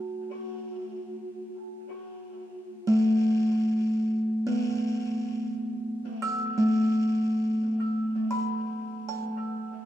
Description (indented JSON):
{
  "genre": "ambient",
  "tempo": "free time",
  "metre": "none",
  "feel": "none",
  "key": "unclear",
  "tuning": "A4 = 440 Hz",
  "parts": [
    { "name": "buzzing kalimba", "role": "solo", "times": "0.0-9.9 s", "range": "A3 to E6", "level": "-26 LUFS", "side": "equal", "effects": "dub echo" }
  ],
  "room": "wet spring reverb, RT60 2.5 s",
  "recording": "echo-heavy mix",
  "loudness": "-25 LUFS",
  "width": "side -12 dB against mid",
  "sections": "0.0-9.9 A section",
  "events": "none",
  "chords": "0.0 E5"
}